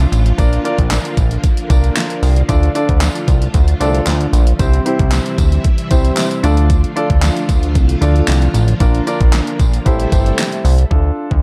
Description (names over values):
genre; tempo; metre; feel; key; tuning
dance-pop; 114 BPM; 4/4; straight; D minor; A4 = 439 Hz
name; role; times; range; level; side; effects
warm grand piano; accompaniment; 0.0-11.4 s; C4 to E5; -23 LUFS; equal; sidechain pumping
string machine, violins; sustained chords; 0.0-10.9 s; C3 to F4; -26 LUFS; equal; ensemble chorus, sidechain pumping
chorused synth bass; bass; 0.0-11.4 s; G1 to D2; -16 LUFS; equal; sidechain pumping
pop drum kit; drums; 0.0-11.4 s; handclaps, hi-hat, kick drum, snare drum; -18 LUFS; equal; overdrive
tambourine; percussion; 0.1-10.8 s; none; -36 LUFS; equal; none
room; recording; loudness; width
little or no reverb; dark, warm production; -14 LUFS; mono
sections
0.0-10.9 A section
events
none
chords
0.4 Bb; 2.5 Dm; 4.6 C; 6.4 Dm; 8.8 Bb; 9.9 Am7; 10.9 Dm